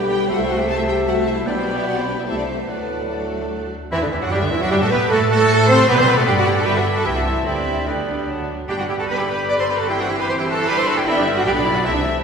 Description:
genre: quick classical-period movement for symphony orchestra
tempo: 151 BPM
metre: 3/4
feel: rubato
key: G major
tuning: A4 = 441 Hz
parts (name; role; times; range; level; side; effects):
- clear clarinet; second line; 0.0-12.2 s; D4 to C6; -28 LUFS; left 1 dB; none
- clear oboe; second line; 0.0-12.1 s; B3 to G5; -27 LUFS; right 1 dB; none
- large flute ensemble; second line; 0.0-12.1 s; D5 to D6; -30 LUFS; left 2 dB; none
- rich studio violin section; second line; 0.0-12.2 s; A4 to D6; -30 LUFS; left 2 dB; none
- mellow bassoon; accompaniment; 0.0-12.2 s; A2 to C4; -26 LUFS; right 1 dB; none
- rich studio viola section; accompaniment; 0.0-12.2 s; D3 to A4; -27 LUFS; right 1 dB; none
- mellow French horn section; sustained chords; 0.0-12.0 s; D3 to A4; -27 LUFS; left 3 dB; none
- rich studio double bass section; bass; 0.0-12.2 s; G1 to C3; -25 LUFS; right 1 dB; none
- warm studio cello section; bass; 0.0-12.2 s; F#3 to D5; -23 LUFS; right 3 dB; none
- rich studio violin section; melody; 0.1-12.2 s; A4 to A5; -30 LUFS; left 4 dB; none
- clear trumpet section; stabs; 3.9-12.0 s; D4 to G5; -26 LUFS; equal; none
room: wet scoring stage reverb, RT60 1.6 s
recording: heard from further back in the room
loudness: -16 LUFS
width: side -6 dB against mid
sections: 0.0-3.9 A section; 3.9-12.2 B section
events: none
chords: 0.3 Am/C; 1.5 G/B; 2.3 Am7/C; 2.7 D; 3.9 G; 5.1 D7/A; 6.3 G; 7.1 Am/C; 7.5 G/D; 8.3 D; 8.7 G; 9.9 C/G; 11.1 G

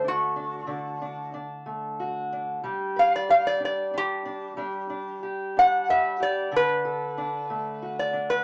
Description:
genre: acoustic country blues, solo or duo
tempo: 62 BPM (dotted quarters)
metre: 12/8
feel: straight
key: D major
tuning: A4 = 435 Hz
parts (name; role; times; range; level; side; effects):
- metal-body resonator slide guitar; melody; 0.0-8.4 s; F#4 to F#5; -25 LUFS; equal; none
- fingerpicked steel-string acoustic guitar; accompaniment; 0.0-8.4 s; D3 to B4; -34 LUFS; equal; none
room: moderate small room ambience, RT60 0.5 s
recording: none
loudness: -26 LUFS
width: mono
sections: 0.0-8.4 A section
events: none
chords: 0.0 D; 2.6 G; 6.5 D

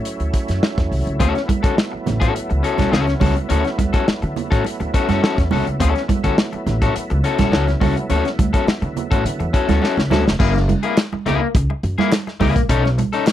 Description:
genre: funk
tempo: 104 BPM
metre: 4/4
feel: straight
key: unclear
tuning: A4 = 440 Hz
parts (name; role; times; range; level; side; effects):
- overdriven tonewheel organ; sustained chords; 0.0-10.4 s; F#3 to E4; -28 LUFS; right 3 dB; slow rotary speaker, chorus vibrato
- warm soul drum kit; drums; 0.1-13.3 s; crash cymbal, hi-hat, kick drum, snare drum; -20 LUFS; equal; none
- upright bass; bass; 0.2-13.0 s; E#1 to D3; -20 LUFS; equal; none
- electric guitar at the edge of break-up; accompaniment; 1.2-13.3 s; A#3 to A4; -21 LUFS; left 6 dB; none
- congas; percussion; 1.2-13.3 s; none; -24 LUFS; right 7 dB; none
- group handclap; percussion; 11.0-13.3 s; none; -32 LUFS; equal; none
room: little or no reverb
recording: dry, close 1970s-style studio recording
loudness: -16 LUFS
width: side -12 dB against mid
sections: 0.0-10.4 A section; 10.4-13.3 B section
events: break 0.0-1.2; drum fill 9.8-10.4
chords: 0.0 Dmaj7; 10.4 F#9; 12.7 B9

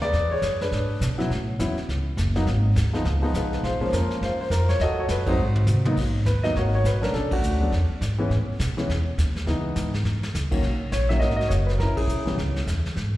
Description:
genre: jazz piano trio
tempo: 206 BPM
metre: 4/4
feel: swing 61% on 8ths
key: G# minor from 6.0 s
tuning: A4 = 440 Hz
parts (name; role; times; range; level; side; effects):
- dark concert grand piano; melody; 0.0-12.4 s; G#2 to E5; -26 LUFS; left 1 dB; plate reverb, slapback echo
- upright bass; bass; 0.0-13.2 s; F#1 to B#2; -23 LUFS; equal; none
- vintage brush drum kit; drums; 0.0-13.2 s; brushed snare drum, crash cymbal, hi-hat, kick drum, ride cymbal, snare drum, toms; -32 LUFS; equal; none
room: moderate club reverb, RT60 0.5 s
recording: live gig heard through the venue's PA, recital hall reverb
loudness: -21 LUFS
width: side -16 dB against mid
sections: 0.0-6.0 A section; 6.0-13.2 B section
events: band accent 5.2, 7.3, 11.9; drum fill 5.4-6.0, 10.0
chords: 0.1 E7; 1.3 A6; 2.5 G#5; 3.0 C#7; 3.6 F#maj7; 4.8 D#dim; 5.4 G#7; 6.0 G#m9; 7.1 Bm9; 7.7 E; 8.3 Asus2; 9.5 C#m7; 10.0 F#5; 10.6 Bmaj9; 11.8 A#m7b5; 12.4 C#m

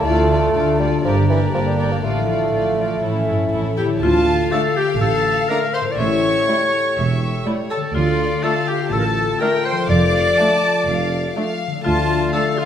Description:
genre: cinematic, playful, whimsical film cue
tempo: 123 BPM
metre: 4/4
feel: straight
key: D minor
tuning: A4 = 440 Hz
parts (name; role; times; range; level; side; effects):
- warm chamber violin section; melody; 0.0-12.7 s; C#5 to A5; -27 LUFS; left 2 dB; none
- mellow hollow silver concert flute; second line; 0.0-12.7 s; D5 to Bb5; -29 LUFS; left 2 dB; none
- warm chamber violin section; second line; 0.0-12.7 s; A4 to D6; -29 LUFS; left 1 dB; none
- warm clarinet; second line; 0.0-12.7 s; C#4 to D5; -22 LUFS; left 1 dB; none
- mellow bassoon; accompaniment; 0.0-12.7 s; E3 to Bb3; -24 LUFS; right 3 dB; none
- warm chamber viola section; accompaniment; 0.0-12.4 s; A3 to G4; -29 LUFS; right 1 dB; none
- mellow French horn section; sustained chords; 0.0-12.7 s; A3 to A4; -28 LUFS; left 5 dB; none
- concert harp; arpeggios; 0.0-12.7 s; G2 to A4; -25 LUFS; left 7 dB; none
- dark chamber double bass section; bass; 0.1-12.2 s; E1 to D2; -25 LUFS; right 2 dB; none
- warm studio cello section; bass; 0.1-12.2 s; D2 to A2; -25 LUFS; right 3 dB; none
- marimba with medium hard mallets; melody; 3.8-12.7 s; F4 to D5; -25 LUFS; left 4 dB; none
- bright oboe; second line; 3.8-12.7 s; F4 to D5; -26 LUFS; right 1 dB; none
- mellow tuba; bass; 4.0-12.2 s; E1 to D2; -28 LUFS; right 4 dB; none
room: wet recital hall reverb, RT60 1.5 s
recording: none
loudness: -16 LUFS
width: side -9 dB against mid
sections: 0.0-4.0 A section; 4.0-12.7 B section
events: none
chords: 0.1 Dm; 1.0 Gm; 2.0 Dm/A; 3.0 A; 4.0 Dm; 6.0 A7; 7.9 Dm; 9.9 Dm/F; 11.9 Dm

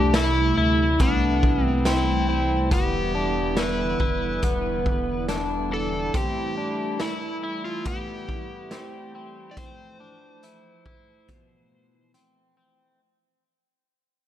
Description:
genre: dream pop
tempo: 70 BPM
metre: 4/4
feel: straight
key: C major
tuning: A4 = 435 Hz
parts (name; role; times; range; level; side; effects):
- overdriven slide guitar; melody; 0.0-12.1 s; D4 to D5; -28 LUFS; right 1 dB; tape echo
- hollow soft pad; sustained chords; 0.0-13.0 s; C3 to E4; -29 LUFS; equal; chorus
- electric guitar at the edge of break-up; arpeggios; 0.0-13.0 s; B2 to E4; -29 LUFS; left 3 dB; wide subtle chorus, tape echo
- sub bass with octave; bass; 0.0-6.1 s; E1 to D2; -27 LUFS; equal; none
- raw garage drum kit; drums; 0.1-12.3 s; hi-hat, kick drum, snare drum; -26 LUFS; equal; none
room: moderate concert hall reverb, RT60 2.0 s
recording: none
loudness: -21 LUFS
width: side -11 dB against mid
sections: 0.0-13.0 A section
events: fade-out 0.0-13.0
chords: 0.0 C69; 2.7 Em7; 6.1 C6; 9.6 Fmaj7

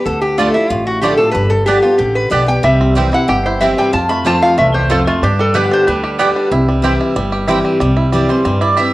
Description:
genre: bluegrass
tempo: 186 BPM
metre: 4/4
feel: straight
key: C major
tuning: A4 = 442 Hz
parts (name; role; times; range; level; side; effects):
- lap resonator guitar; melody; 0.0-6.8 s; E4 to B5; -16 LUFS; equal; none
- picked steel-string acoustic guitar; accompaniment; 0.0-8.9 s; E2 to G4; -16 LUFS; left 1 dB; none
- upright bass; bass; 0.1-8.9 s; G1 to G2; -19 LUFS; equal; none
- mandolin; stabs; 0.4-8.9 s; A3 to A5; -19 LUFS; right 4 dB; none
- bluegrass banjo; arpeggios; 2.6-8.9 s; E3 to G4; -19 LUFS; right 2 dB; none
room: moderate large studio reverb, RT60 1.1 s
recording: worn, warbling old tape, cassette tape, warbly pitch drift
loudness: -11 LUFS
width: side -17 dB against mid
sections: 0.0-7.8 A section; 7.8-8.9 B section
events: mandolin solo 7.8-8.9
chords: 0.1 Dm; 1.3 Gadd9; 2.6 C; 3.9 F; 5.2 G; 6.5 C

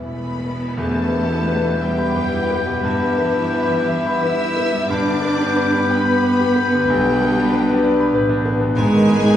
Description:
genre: classical, romantic movement for piano and orchestra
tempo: 79-95 BPM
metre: 3/4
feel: rubato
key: E minor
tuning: A4 = 442 Hz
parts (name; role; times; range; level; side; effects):
- clear concert grand piano; melody; 0.0-9.4 s; B1 to B5; -21 LUFS; left 1 dB; none
- clear studio violin section; melody; 0.0-9.4 s; B4 to E6; -30 LUFS; left 2 dB; none
- clear symphonic violin section; second line; 0.0-9.4 s; E4 to E5; -31 LUFS; left 2 dB; none
- warm symphonic viola section; accompaniment; 0.0-9.4 s; E3 to E4; -26 LUFS; right 1 dB; none
- rich chamber double bass section; bass; 0.0-9.4 s; E1 to G2; -27 LUFS; right 1 dB; none
- rich symphonic cello section; bass; 0.1-9.4 s; E2 to E4; -24 LUFS; right 2 dB; none
- mellow clarinet; second line; 0.8-9.4 s; D4 to G4; -29 LUFS; left 1 dB; none
- mellow concert flute; second line; 0.8-9.4 s; D#6 to G6; -27 LUFS; left 2 dB; none
- mellow cor anglais; second line; 0.8-9.4 s; B4; -30 LUFS; equal; none
- mellow bassoon; accompaniment; 0.8-9.4 s; G#3 to B3; -27 LUFS; left 2 dB; none
- dark French horn section; sustained chords; 0.8-9.4 s; G#3 to G4; -26 LUFS; left 3 dB; none
- clear trumpet section; stabs; 0.8-9.4 s; B4; -26 LUFS; left 2 dB; none
- tam-tam; percussion; 0.8-3.5 s; none; -34 LUFS; left 1 dB; none
room: wet recital hall reverb, RT60 1.5 s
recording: heard from further back in the room, studio reverb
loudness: -16 LUFS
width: side -10 dB against mid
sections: 0.8-9.4 A section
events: band accent 0.8-1.5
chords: 0.0 E5; 0.8 Em; 2.8 Em/G; 4.9 G; 6.9 G/B; 8.8 G#m

